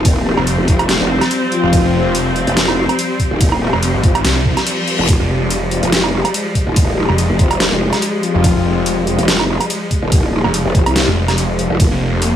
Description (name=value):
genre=heavy wobble dubstep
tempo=143 BPM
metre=4/4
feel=swing 55% on 16ths, half-time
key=F minor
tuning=A4 = 438 Hz
part: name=rich chamber string section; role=sustained chords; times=0.0-12.4 s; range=F3 to C4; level=-20 LUFS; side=left 1 dB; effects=sidechain pumping, low-pass filter
part: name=growl bass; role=bass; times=0.0-11.9 s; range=Eb1 to C2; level=-17 LUFS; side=equal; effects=chorus, overdrive
part: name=electronic kick drum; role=drums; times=0.0-11.9 s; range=none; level=-14 LUFS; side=equal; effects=small room reverb
part: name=dubstep drum kit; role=drums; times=0.1-12.3 s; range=hi-hat, ride cymbal, snare drum, woodblock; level=-19 LUFS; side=right 1 dB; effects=overdrive, small room reverb
part: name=snarling distorted saw bass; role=bass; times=0.4-12.4 s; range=F1 to C2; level=-17 LUFS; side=equal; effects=distortion, overdrive
part: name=mellow brass ensemble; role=stabs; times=0.7-10.8 s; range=F3 to F4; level=-20 LUFS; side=left 4 dB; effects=vintage 12-bit sampler grit, digital delay
part: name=reverse cymbal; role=sound effects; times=4.4-5.1 s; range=none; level=-22 LUFS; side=left 5 dB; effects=none
room=light reverb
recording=small room ambience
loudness=-12 LUFS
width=side -10 dB against mid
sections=0.0-12.4 A section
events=reverse cymbal 4.4-5.1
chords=0.0 Fmadd9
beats=| 0.05 0.47 0.89 1.31 | 1.73 2.15 2.57 2.99 | 3.41 3.83 4.25 4.67 | 5.08 5.50 5.92 6.34 | 6.76 7.18 7.60 8.02 | 8.44 8.86 9.28 9.70 | 10.12 10.54 10.96 11.38 | 11.80 12.22